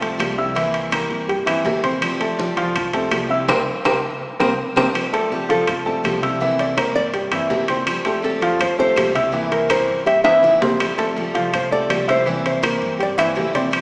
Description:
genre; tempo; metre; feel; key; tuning
latin, Cuban son and guajira; 164 BPM; 4/4; straight; F major; A4 = 440 Hz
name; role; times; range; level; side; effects
picked steel-string acoustic guitar; accompaniment; 0.0-13.8 s; C3 to G4; -26 LUFS; equal; none
warm baby grand piano; arpeggios; 0.0-13.8 s; E3 to E6; -21 LUFS; equal; none
upright bass; bass; 0.0-13.8 s; C2 to G2; -34 LUFS; equal; none
congas; percussion; 0.0-13.8 s; none; -34 LUFS; equal; none
timbales; percussion; 0.0-13.8 s; none; -23 LUFS; equal; none
claves; percussion; 0.2-13.8 s; none; -30 LUFS; equal; none
nylon-string guitar; melody; 5.1-13.7 s; G4 to E5; -20 LUFS; equal; none
room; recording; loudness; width
wet church reverb, RT60 2.8 s; recorded in a church or concert hall, small speaker sound; -16 LUFS; side -30 dB against mid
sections
0.0-4.9 A section; 4.9-13.8 B section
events
drum fill 3.5-4.9, 10.3-10.8; band accent 3.5-4.9; nylon-string guitar solo 4.9-13.8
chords
0.0 Fadd9; 0.6 C7; 2.0 Fadd9; 3.5 C5; 4.9 Fadd9; 6.4 C7; 7.9 Fadd9; 9.3 C7; 10.8 Fadd9; 12.3 C7

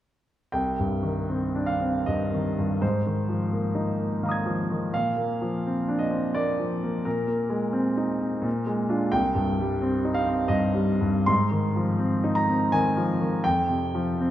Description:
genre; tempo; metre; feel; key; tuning
classical, impressionist solo piano; 74-88 BPM; 3/4; rubato; C minor; A4 = 440 Hz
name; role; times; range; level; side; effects
clear grand piano; solo; 0.5-14.3 s; C2 to Ab6; -23 LUFS; equal; none
room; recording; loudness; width
moderate concert hall reverb, RT60 2.2 s; none; -23 LUFS; side -12 dB against mid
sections
0.5-14.3 A section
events
none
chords
0.5 Cmadd9; 2.8 Ab69; 4.9 Bbadd9; 7.1 Abadd9/Bb; 8.5 Bb7; 9.1 Cm; 11.3 Ab6; 13.4 F5

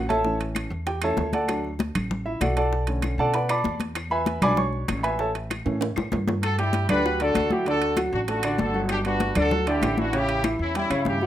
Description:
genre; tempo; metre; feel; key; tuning
latin, salsa; 194 BPM; 4/4; straight; D major; A4 = 440 Hz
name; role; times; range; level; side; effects
dark grand piano; accompaniment; 0.0-11.3 s; C#3 to D6; -25 LUFS; right 1 dB; none
upright bass; bass; 0.0-11.3 s; G1 to B2; -29 LUFS; equal; none
congas; percussion; 0.1-11.3 s; none; -29 LUFS; left 2 dB; none
timbales; percussion; 0.1-11.1 s; none; -33 LUFS; right 7 dB; none
bongos; percussion; 0.2-11.3 s; none; -35 LUFS; left 8 dB; none
claves; percussion; 0.5-11.1 s; none; -40 LUFS; left 2 dB; none
clear horn section; melody; 6.4-11.3 s; C#4 to B4; -26 LUFS; equal; none
room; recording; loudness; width
moderate studio reverb, RT60 0.7 s; rough home demo mix; -22 LUFS; side -12 dB against mid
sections
0.0-6.4 A section; 6.4-11.3 B section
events
grand piano solo 0.0-6.4; drum fill 5.7-6.4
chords
0.2 A; 1.5 D; 2.7 Bm7; 4.0 E7; 5.2 A; 6.4 Gmaj7; 7.7 D; 8.9 Gmaj7; 10.1 A7

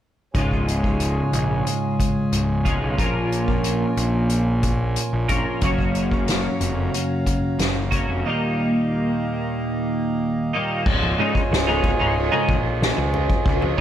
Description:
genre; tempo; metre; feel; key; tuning
psychedelic rock; 91 BPM; 4/4; straight; Db major; A4 = 440 Hz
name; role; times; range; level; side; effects
pedal harmonium; sustained chords; 0.3-13.8 s; F4 to Bb5; -28 LUFS; right 2 dB; none
twelve-string electric guitar; riff; 0.3-13.8 s; Db2 to Bb4; -22 LUFS; equal; flanger, double-tracked left and right
fuzz picked electric bass; bass; 0.3-13.7 s; Db1 to Db2; -25 LUFS; equal; overdrive
soft-mallet drum kit; drums; 0.3-13.8 s; crash cymbal, hi-hat, kick drum, ride cymbal, snare drum; -23 LUFS; equal; none
congas; percussion; 11.0-13.8 s; none; -33 LUFS; left 2 dB; none
room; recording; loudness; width
light reverb, studio reverb; none; -19 LUFS; side -10 dB against mid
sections
0.4-10.9 A section; 10.9-13.8 B section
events
none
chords
0.4 Db; 3.0 Bbm7; 5.6 Gbmaj7; 8.3 Ebadd9; 10.9 Dbadd9

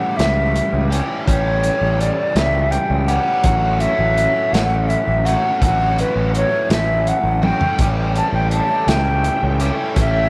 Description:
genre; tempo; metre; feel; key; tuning
psychedelic rock; 55 BPM (dotted quarters); 6/8; straight; A mixolydian; A4 = 440 Hz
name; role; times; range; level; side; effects
mellow hollow silver concert flute; melody; 0.0-10.3 s; B4 to A5; -22 LUFS; equal; tape echo
biting overdriven guitar; riff; 0.0-10.3 s; A2 to G4; -26 LUFS; equal; flanger
fuzz fingered electric bass; bass; 0.2-10.3 s; A1 to C#2; -22 LUFS; equal; overdrive
crunchy breakbeat drum kit; drums; 0.2-10.1 s; hi-hat, kick drum, snare drum, toms; -23 LUFS; equal; none
string machine, violas; sustained chords; 7.8-10.3 s; A4 to G5; -31 LUFS; equal; ensemble chorus
room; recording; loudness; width
light reverb; none; -18 LUFS; mono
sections
0.0-10.3 A section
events
drum fill 7.4-7.8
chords
0.0 A7; 3.4 F#m/A; 7.8 A7

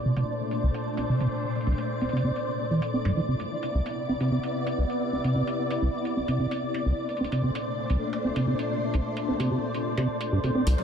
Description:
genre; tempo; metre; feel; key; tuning
IDM; 130 BPM; 4/4; straight; unclear; A4 = 439 Hz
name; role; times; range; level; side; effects
soft string machine; sustained chords; 0.0-10.8 s; Bb2 to D5; -30 LUFS; left 1 dB; phaser, ensemble chorus
flickering grainy texture; texture; 0.0-10.8 s; D5; -34 LUFS; left 1 dB; built-in reverb
deep acid bass; arpeggios; 0.1-10.6 s; C2 to C4; -27 LUFS; right 1 dB; lush chorus, ping-pong delay
electronic hi-hat, congas and woodblock; drums; 0.2-10.8 s; none; -41 LUFS; right 2 dB; low-pass filter on hats, low-pass filter on perc
round analog bass; bass; 10.7 s; C2; -22 LUFS; equal; none
room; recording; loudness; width
moderate plate reverb, RT60 1.7 s; none; -25 LUFS; side -8 dB against mid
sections
0.0-10.7 A section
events
none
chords
0.0 Bbmaj9; 3.3 Cmaj9; 7.0 Bbmaj9

